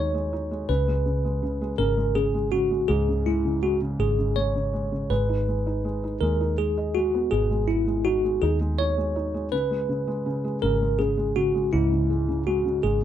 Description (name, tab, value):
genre	six-eight pop ballad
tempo	54 BPM (dotted quarters)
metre	6/8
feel	straight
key	unclear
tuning	A4 = 440 Hz
part	bell-like tine electric piano	melody	0.0-13.0 s	E4 to C#5	-25 LUFS	equal	medium stereo tremolo
part	felt-muted upright piano	accompaniment	0.0-13.0 s	G#2 to D#5	-29 LUFS	right 1 dB	none
part	vintage muted fingered electric bass	bass	0.0-13.0 s	G#1 to D#2	-27 LUFS	equal	none
room	little or no reverb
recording	rough home demo mix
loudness	-22 LUFS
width	side -10 dB against mid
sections	0.0-13.0 A section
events	none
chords	0.0 G#m; 0.7 C#5; 5.1 G#m; 9.5 C#5